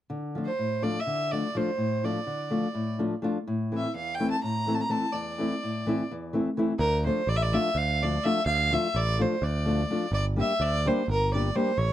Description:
balkan folk, Balkan wedding band; free time; D minor; A4 = 443 Hz
nylon-string guitar; accompaniment; 0.1-11.7 s; E2 to G4; -28 LUFS; left 2 dB
warm fiddle; melody; 0.5-11.9 s; Bb4 to Bb5; -28 LUFS; right 1 dB
picked electric bass; bass; 6.8-11.9 s; G1 to D2; -27 LUFS; right 1 dB
light reverb; dark, warm production; -25 LUFS; side -12 dB against mid
0.1-6.8 A section; 6.8-11.9 B section
0.1 Dm; 3.4 Am; 6.8 Dm; 10.1 Gm

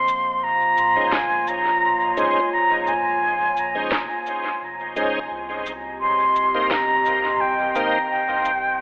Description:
ambient dub; 86 BPM; 4/4; swing 53% on 16ths; Bb dorian; A4 = 440 Hz
concert flute; melody; 0.0-8.8 s; G5 to C6; -22 LUFS; equal; dub echo
warbly tape-like pad; sustained chords; 0.0-8.8 s; Bb3 to Eb5; -33 LUFS; equal; chorus, built-in reverb
warm sub bass; bass; 0.0-8.8 s; F1 to C2; -49 LUFS; equal; tube saturation
electronic shaker and snare drum; drums; 0.1-8.6 s; -33 LUFS; equal; dub echo
bright tonewheel organ; stabs; 1.0-8.0 s; Ab3 to C5; -30 LUFS; equal; overdrive, chorus vibrato, slow rotary speaker, low-pass filter, dub echo
electronic kick drum; drums; 1.1-6.9 s; -37 LUFS; equal
wet echo chamber reverb, RT60 1.7 s; telephone sound; -21 LUFS; mono
0.0-8.8 A section
0.0 Bbm11; 5.3 Cm7

